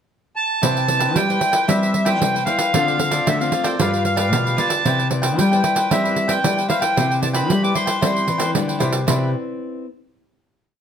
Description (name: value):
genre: samba and choro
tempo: 114 BPM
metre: 4/4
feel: straight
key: C major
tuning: A4 = 440 Hz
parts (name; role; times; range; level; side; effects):
- accordion; melody; 0.4-8.5 s; E5 to D6; -20 LUFS; equal; plate reverb
- cavaquinho; accompaniment; 0.6-9.3 s; E4 to G5; -26 LUFS; right 1 dB; none
- nylon-string guitar; accompaniment; 0.6-9.8 s; D3 to D5; -26 LUFS; left 4 dB; none
- nylon-string guitar; bass; 0.6-9.3 s; G2 to G3; -22 LUFS; left 1 dB; none
- pandeiro; percussion; 0.6-9.2 s; none; -23 LUFS; right 4 dB; none
room: moderate studio reverb, RT60 0.9 s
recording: none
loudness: -16 LUFS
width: side -8 dB against mid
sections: 0.0-0.6 pickup bar; 0.6-9.1 A section; 9.1-10.8 final chord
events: none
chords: 0.0 N.C.; 0.6 Cmaj9; 2.7 Dm7; 3.8 G7; 4.9 Cmaj9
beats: 0.10 | 0.63 1.16 1.69 2.21 | 2.74 3.27 3.80 4.33 | 4.86 5.38 5.91 6.44 | 6.97 7.50 8.02 8.55 | 9.08 9.61